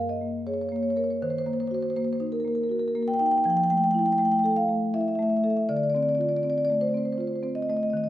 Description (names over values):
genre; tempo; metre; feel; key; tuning
classical, contemporary piece for solo marimba; 80 BPM; 3/4; rubato; unclear; A4 = 440 Hz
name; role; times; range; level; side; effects
marimba with medium mallets; solo; 0.0-8.1 s; Gb2 to G5; -23 LUFS; equal; none
room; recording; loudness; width
wet recital hall reverb, RT60 1.8 s; heard from further back in the room; -23 LUFS; side -14 dB against mid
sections
0.0-8.1 A section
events
none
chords
0.0 Gbadd9; 1.2 Ebm; 3.5 Fmaj9; 5.7 Dm7